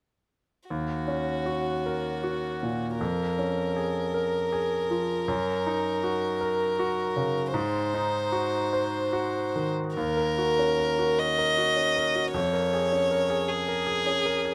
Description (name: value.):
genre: neoclassical piano and strings.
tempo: 52 BPM (dotted quarters).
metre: 6/8.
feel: rubato.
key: Eb dorian.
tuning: A4 = 440 Hz.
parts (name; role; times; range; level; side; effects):
warm violin; melody; 0.7-14.5 s; Gb4 to Eb5; -30 LUFS; equal; none.
bright concert grand piano; accompaniment; 0.7-14.5 s; Eb2 to C5; -30 LUFS; equal; none.
room: little or no reverb.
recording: close, detailed microphones.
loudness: -27 LUFS.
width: mono.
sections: 0.7-10.0 A section; 10.0-14.5 B section.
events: none.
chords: 0.7 Ebm7; 3.0 Db6/F; 5.3 Gb6; 7.6 Ab7; 10.0 Ebm7; 12.3 Db6/F.